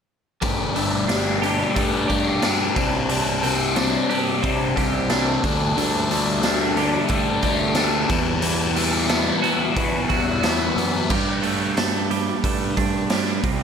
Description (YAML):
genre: quiet-loud alternative rock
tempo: 90 BPM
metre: 4/4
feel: straight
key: G major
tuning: A4 = 441 Hz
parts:
  - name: twelve-string electric guitar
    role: arpeggios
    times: 0.4-13.6 s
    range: E2 to G4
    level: -26 LUFS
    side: right 8 dB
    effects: none
  - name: crunchy overdriven guitar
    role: riff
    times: 0.4-11.1 s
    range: C3 to G4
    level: -22 LUFS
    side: left 5 dB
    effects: phaser, slapback echo
  - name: fuzz picked electric bass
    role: bass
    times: 0.4-13.6 s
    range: G1 to E3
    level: -27 LUFS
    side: right 1 dB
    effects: overdrive
  - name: raw garage drum kit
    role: drums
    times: 0.4-13.6 s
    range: crash cymbal, hi-hat, kick drum, snare drum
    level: -24 LUFS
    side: equal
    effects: none
room: moderate lush hall reverb, RT60 2.5 s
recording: big arena sound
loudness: -18 LUFS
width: side -7 dB against mid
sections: 0.4-11.1 A section; 11.1-13.6 B section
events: none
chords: 0.4 Gsus2; 2.8 Csus2; 5.4 Gsus2/D; 8.1 Emadd9; 11.1 Gsus2